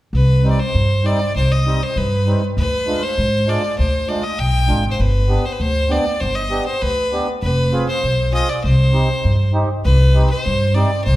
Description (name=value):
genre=klezmer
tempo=99 BPM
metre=2/4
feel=straight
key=C harmonic minor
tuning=A4 = 445 Hz
part: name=upright bass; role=bass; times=0.1-11.2 s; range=F1 to Ab2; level=-16 LUFS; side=equal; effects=none
part: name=clear violin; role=melody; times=0.2-11.2 s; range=B4 to G5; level=-21 LUFS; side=equal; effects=none
part: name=mellow accordion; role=accompaniment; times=0.4-10.9 s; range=G3 to Ab4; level=-24 LUFS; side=right 1 dB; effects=none
room=wet recital hall reverb, RT60 1.3 s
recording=heard from further back in the room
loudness=-15 LUFS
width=side -16 dB against mid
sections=0.1-9.8 A section; 9.8-11.2 A section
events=none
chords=0.1 Cm; 2.6 Ddim; 5.0 G; 7.4 Fm; 8.6 Cm